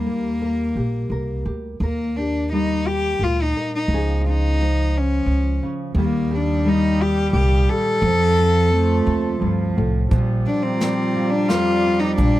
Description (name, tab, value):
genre	acoustic folk-pop ballad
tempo	87 BPM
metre	3/4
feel	straight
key	unclear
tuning	A4 = 440 Hz
part	warm cello	melody	0.0-12.4 s	Bb3 to A4	-22 LUFS	left 2 dB	none
part	nylon-string guitar	accompaniment	0.0-12.4 s	F2 to Bb4	-25 LUFS	equal	none
part	upright bass	bass	0.0-12.4 s	Bb1 to F2	-21 LUFS	equal	none
part	dark analog pad	sustained chords	5.9-12.4 s	F4 to Eb6	-31 LUFS	right 3 dB	chorus, phaser
part	warm cello	second line	6.0-12.4 s	F3 to A3	-24 LUFS	right 2 dB	none
part	soft brush drum kit	drums	10.1-12.3 s	hi-hat, kick drum, snare drum	-22 LUFS	equal	none
room	little or no reverb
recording	close, detailed microphones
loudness	-17 LUFS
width	side -15 dB against mid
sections	0.0-1.8 A section; 1.8-10.1 B section; 10.1-12.4 C section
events	none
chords	0.0 Eb; 3.9 Dbadd9; 6.0 Eb; 8.0 F; 10.1 Bb